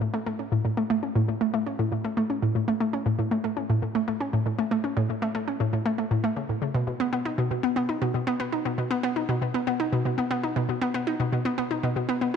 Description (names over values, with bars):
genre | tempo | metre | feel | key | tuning
ambient | 118 BPM | 4/4 | straight | A lydian | A4 = 441 Hz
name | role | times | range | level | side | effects
hollow square pluck | solo | 0.0-12.4 s | A2 to D#4 | -24 LUFS | equal | chorus, ping-pong delay
room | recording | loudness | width
moderate plate reverb, RT60 3.4 s | none | -24 LUFS | side -7 dB against mid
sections
0.0-12.4 A section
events
none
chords
none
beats
0.14 | 0.65 1.15 1.66 2.17 | 2.68 3.19 3.70 4.21 | 4.71 5.22 5.73 6.24 | 6.75 7.26 7.76 8.27 | 8.78 9.29 9.80 10.31 | 10.81 11.32 11.83 12.34